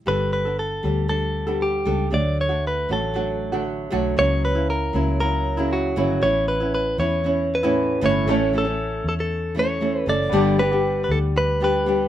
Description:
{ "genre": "acoustic pop", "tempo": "117 BPM", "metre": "4/4", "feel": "straight", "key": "unclear", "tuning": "A4 = 440 Hz", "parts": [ { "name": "flamenco guitar", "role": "accompaniment", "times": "0.0-12.1 s", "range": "G2 to A4", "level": "-23 LUFS", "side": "equal", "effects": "none" }, { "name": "direct-recorded clean electric guitar", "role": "melody", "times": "0.1-12.1 s", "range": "F#4 to D5", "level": "-24 LUFS", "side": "equal", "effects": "none" }, { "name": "vintage muted fingered electric bass", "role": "bass", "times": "0.1-12.1 s", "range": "F#1 to E2", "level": "-25 LUFS", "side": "equal", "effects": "none" }, { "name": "bright upright piano", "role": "accompaniment", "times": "8.3-12.1 s", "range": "A3 to D5", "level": "-32 LUFS", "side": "left 1 dB", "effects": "none" } ], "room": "moderate studio reverb, RT60 0.6 s", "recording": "minimal, uncompressed stereo recording", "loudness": "-19 LUFS", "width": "side -11 dB against mid", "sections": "0.1-8.3 A section; 8.3-12.1 B section", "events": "none", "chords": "0.1 Gadd9; 2.1 D; 4.2 F#7/C#; 6.2 Aadd9; 8.3 A; 10.3 G" }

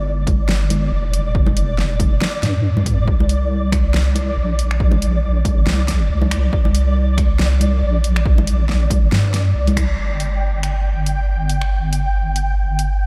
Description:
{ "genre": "deep dubstep", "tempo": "139 BPM", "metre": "4/4", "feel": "swing 56% on 16ths, half-time", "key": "unclear", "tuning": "A4 = 440 Hz", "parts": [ { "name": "deep soft wobble bass", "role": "bass", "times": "0.0-13.1 s", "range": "F1 to G2", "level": "-20 LUFS", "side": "equal", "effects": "chorus" }, { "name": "flickering grainy texture", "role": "texture", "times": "0.0-13.1 s", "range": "D5 to G5", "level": "-30 LUFS", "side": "equal", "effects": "built-in reverb" }, { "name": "deep house drum kit", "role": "drums", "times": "0.3-12.9 s", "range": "finger snaps, hi-hat, snare drum", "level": "-28 LUFS", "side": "equal", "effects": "overdrive" }, { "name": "electronic kick drum", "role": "drums", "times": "0.3-9.9 s", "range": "none", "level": "-20 LUFS", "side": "equal", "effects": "overdrive" }, { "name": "congas", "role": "percussion", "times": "0.3-9.8 s", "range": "none", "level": "-30 LUFS", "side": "equal", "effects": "dub echo" } ], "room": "light reverb, digital ambience", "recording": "none", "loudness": "-18 LUFS", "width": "mono", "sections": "0.0-10.0 A section; 10.0-13.1 B section", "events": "band accent 9.8", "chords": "0.0 G5; 3.1 C5; 10.0 N.C." }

